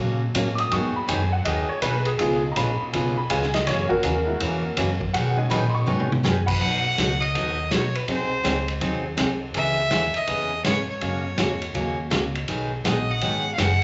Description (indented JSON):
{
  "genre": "country, western swing",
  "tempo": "163 BPM",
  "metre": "4/4",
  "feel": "swing 64% on 8ths",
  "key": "B major",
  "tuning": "A4 = 440 Hz",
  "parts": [
    { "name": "picked steel-string acoustic guitar", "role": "accompaniment", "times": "0.0-13.7 s", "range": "B2 to B#4", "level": "-29 LUFS", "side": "equal", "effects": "none" },
    { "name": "upright bass", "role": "bass", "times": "0.0-13.8 s", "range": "F#1 to B2", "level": "-30 LUFS", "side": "equal", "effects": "none" },
    { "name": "honky-tonk upright piano", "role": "accompaniment", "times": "0.3-6.6, 12.8-13.4 s", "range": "E#3 to D#6", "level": "-29 LUFS", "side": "equal", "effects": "none" },
    { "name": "vintage drum kit", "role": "drums", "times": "0.3-13.7 s", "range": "crash cymbal, hi-hat, kick drum, ride cymbal, snare drum, toms", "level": "-30 LUFS", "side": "equal", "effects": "none" },
    { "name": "clear fiddle", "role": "melody", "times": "6.6-13.8 s", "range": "B4 to F#5", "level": "-28 LUFS", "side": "equal", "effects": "none" }
  ],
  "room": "wet large studio reverb, RT60 0.8 s",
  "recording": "nothing above 7.9 kHz",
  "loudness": "-24 LUFS",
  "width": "mono",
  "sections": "0.0-6.6 A section; 6.6-13.8 B section",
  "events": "honky-tonk piano solo 0.0-6.6; drum fill 5.9-6.2",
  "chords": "0.0 F#; 0.7 G#m7; 2.2 C#7; 3.7 F#7; 5.1 B6; 6.6 B; 8.1 G#7/B#; 9.6 C#m7; 11.0 F#; 12.5 G#m7"
}